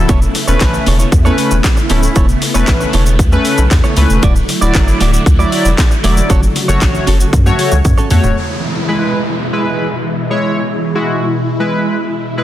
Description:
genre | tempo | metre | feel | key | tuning
dance-pop | 116 BPM | 4/4 | straight | unclear | A4 = 440 Hz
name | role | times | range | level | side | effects
chorused polysynth | accompaniment | 0.0-12.4 s | F#3 to D5 | -17 LUFS | equal | sidechain pumping
string machine, violas | sustained chords | 0.0-12.4 s | B2 to F#4 | -19 LUFS | equal | phaser, ensemble chorus, sidechain pumping
saturated sub bass | bass | 0.0-8.3 s | D1 to F#2 | -13 LUFS | equal | sidechain pumping
clean electric guitar | riff | 0.1-8.3 s | A3 to D5 | -21 LUFS | right 5 dB | analog chorus
house drum kit | drums | 0.1-8.4 s | handclaps, hi-hat, kick drum, shaker, snare drum, toms | -13 LUFS | equal | none
downlifter | sound effects | 8.4-12.4 s | none | -25 LUFS | equal | none
room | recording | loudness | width
light reverb, digital ambience | dense, heavily limited modern master | -10 LUFS | side -13 dB against mid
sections
0.0-8.4 A section; 8.4-12.4 B section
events
drum fill 7.3-8.4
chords
0.1 Aadd9; 4.2 Dadd9; 6.3 F#m; 8.4 E

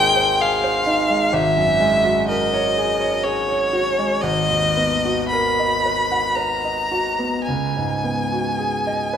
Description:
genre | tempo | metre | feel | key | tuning
classical, impressionist duo for violin and grand piano | 53-65 BPM | 3/4 | rubato | F# major | A4 = 440 Hz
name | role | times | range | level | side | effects
warm violin | melody | 0.0-9.2 s | C#5 to B5 | -19 LUFS | left 1 dB | none
clear grand piano | accompaniment | 0.0-9.2 s | G#1 to F#5 | -21 LUFS | right 1 dB | none
room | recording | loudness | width
moderate scoring stage reverb, RT60 2.0 s | recorded in a church or concert hall | -17 LUFS | side -8 dB against mid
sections
0.0-9.2 A section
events
none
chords
0.0 G#add9; 1.3 F#9/G#; 4.2 G#m9; 7.5 C#9sus4

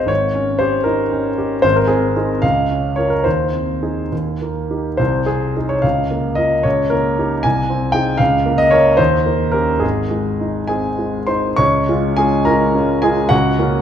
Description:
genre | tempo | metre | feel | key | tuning
classical, romantic character piece for solo piano | 65-80 BPM (dotted quarters) | 6/8 | rubato | Ab major | A4 = 441 Hz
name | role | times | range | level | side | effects
warm grand piano | solo | 0.0-13.8 s | Ab1 to Db6 | -14 LUFS | equal | none
room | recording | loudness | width
moderate scoring stage reverb, RT60 1.7 s | minimal, uncompressed stereo recording | -14 LUFS | side -9 dB against mid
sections
0.0-11.6 A section; 11.6-13.8 B section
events
none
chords
0.1 Eb7/Ab; 1.6 Ab; 2.4 Bbm/Db; 3.2 Ab/Eb; 4.1 Eb; 5.0 Ab/C; 5.8 Bbm/Db; 6.6 Eb7/Db; 7.4 Ab/C; 8.2 Bbm/Db; 9.0 Eb7; 9.8 Ab; 11.6 Db

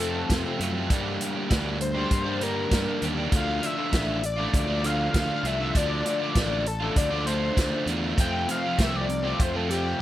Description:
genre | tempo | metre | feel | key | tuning
indie rock | 99 BPM | 4/4 | straight | D minor | A4 = 440 Hz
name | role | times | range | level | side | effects
overdriven synth lead | melody | 0.0-10.0 s | G4 to G5 | -30 LUFS | left 2 dB | distortion, analog delay
overdriven electric guitar | riff | 0.0-10.0 s | F2 to D4 | -31 LUFS | left 6 dB | none
overdriven semi-hollow guitar | riff | 0.0-10.0 s | F2 to G4 | -30 LUFS | right 8 dB | lush chorus, analog delay
fuzz fingered electric bass | bass | 0.0-9.9 s | A1 to G2 | -31 LUFS | equal | overdrive
vintage drum kit | drums | 0.0-9.8 s | hi-hat, kick drum, snare drum | -26 LUFS | equal | none
room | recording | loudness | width
little or no reverb | none | -23 LUFS | side -13 dB against mid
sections
0.0-10.0 A section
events
none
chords
0.0 F; 0.9 Gm; 3.3 Dm; 8.2 Fadd9

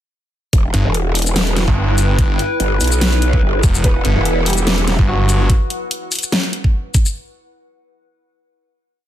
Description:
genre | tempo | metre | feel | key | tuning
heavy wobble dubstep | 145 BPM | 4/4 | swing 54% on 16ths, half-time | E minor | A4 = 437 Hz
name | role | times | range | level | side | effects
growl bass | bass | 0.5-5.0 s | E1 to B1 | -17 LUFS | equal | chorus, overdrive
dubstep drum kit | drums | 0.5-7.1 s | hi-hat, shaker, snare drum | -20 LUFS | left 1 dB | small room reverb
electronic kick drum | drums | 0.5-7.0 s | none | -14 LUFS | equal | small room reverb
warbly tape-like pad | texture | 1.3-5.5 s | E4 to G5 | -24 LUFS | equal | chorus, built-in reverb, sidechain pumping
snarling distorted saw bass | bass | 0.7-5.5 s | E1 to G1 | -15 LUFS | equal | distortion, overdrive
clear grand piano | melody | 3.8-5.5 s | F#3 to B4 | -25 LUFS | equal | tape echo
supersaw pad | sustained chords | 3.8-5.5 s | E3 to E4 | -27 LUFS | right 1 dB | sidechain pumping
room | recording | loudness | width
digital ambience | dense, heavily limited modern master | -13 LUFS | side -12 dB against mid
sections
0.5-7.2 drop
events
drop 0.5-7.2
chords
0.5 Em

